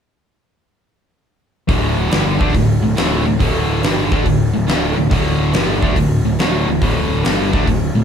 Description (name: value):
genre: blues rock power trio and southern rock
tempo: 140 BPM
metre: 4/4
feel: swing 68% on 8ths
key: unclear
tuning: A4 = 440 Hz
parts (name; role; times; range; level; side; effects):
- sludgy distorted guitar; riff; 1.7-8.0 s; D2 to D4; -17 LUFS; equal; overdrive
- fuzz picked electric bass; bass; 1.7-8.0 s; D1 to D2; -22 LUFS; equal; overdrive
- huge arena drum kit; drums; 1.7-7.8 s; hi-hat, kick drum, snare drum; -18 LUFS; equal; none
room: moderate studio ambience, RT60 0.5 s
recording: band playing live in one room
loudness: -14 LUFS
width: side -7 dB against mid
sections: 1.7-8.0 A section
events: none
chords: 1.7 D5